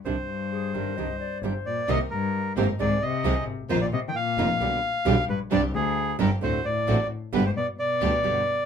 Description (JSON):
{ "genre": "tango", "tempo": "132 BPM", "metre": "4/4", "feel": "rubato", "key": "C minor", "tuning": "A4 = 440 Hz", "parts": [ { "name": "bandoneon", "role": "melody", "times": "0.1-8.7 s", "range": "Ab4 to G5", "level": "-27 LUFS", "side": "equal", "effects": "none" }, { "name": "warm cello", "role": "second line", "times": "0.1-8.7 s", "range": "D2 to Eb3", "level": "-30 LUFS", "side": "left 7 dB", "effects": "none" }, { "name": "nylon-string guitar", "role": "accompaniment", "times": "0.1-8.4 s", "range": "B2 to Ab4", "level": "-27 LUFS", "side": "right 7 dB", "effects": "none" }, { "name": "rich double bass", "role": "bass", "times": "0.1-8.4 s", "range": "F1 to D2", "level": "-30 LUFS", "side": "equal", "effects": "none" }, { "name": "breathy silver concert flute", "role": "second line", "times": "0.5-1.9 s", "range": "Ab4 to Eb5", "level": "-36 LUFS", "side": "left 11 dB", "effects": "none" }, { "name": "clear studio string section", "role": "stabs", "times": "1.9-8.4 s", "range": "Bb3 to Bb4", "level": "-36 LUFS", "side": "right 1 dB", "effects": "none" } ], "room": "moderate club reverb, RT60 0.5 s", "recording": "minimal, uncompressed stereo recording", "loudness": "-23 LUFS", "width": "side -7 dB against mid", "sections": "0.0-1.9 A section; 1.9-8.7 A section", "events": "none", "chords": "0.1 Cmadd9; 1.9 Cm7; 2.8 Ab/C; 3.7 Bbsus4; 4.6 G/B; 5.5 Csus2; 6.4 D7; 7.3 G", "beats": "| 0.05 0.51 0.96 1.42 | 1.88 2.34 2.79 3.25 | 3.70 4.15 4.61 5.06 | 5.51 5.97 6.42 6.87 | 7.33 7.78 8.24" }